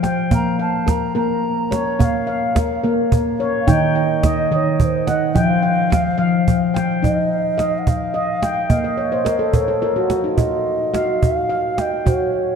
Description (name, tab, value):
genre	world meditative, meditative tuned percussion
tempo	72 BPM (dotted quarters)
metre	6/8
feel	straight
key	unclear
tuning	A4 = 441 Hz
part	handpan	arpeggios	0.0-12.6 s	Eb3 to G5	-18 LUFS	left 2 dB	diffuse ambient delay
part	cajon	percussion	0.0-12.3 s	none	-21 LUFS	right 2 dB	none
part	bass bansuri	melody	0.3-12.6 s	C5 to Bb5	-22 LUFS	right 2 dB	diffuse ambient delay
room	wet church reverb, RT60 2.6 s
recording	dark, warm production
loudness	-16 LUFS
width	side -6 dB against mid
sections	0.0-7.0 A section; 7.0-12.6 B section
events	handpan fill 8.7-10.4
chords	0.3 Bbm; 3.7 Ebm; 5.4 Fsus2; 7.0 Ebadd9; 8.7 Bbm; 10.4 Ebmadd9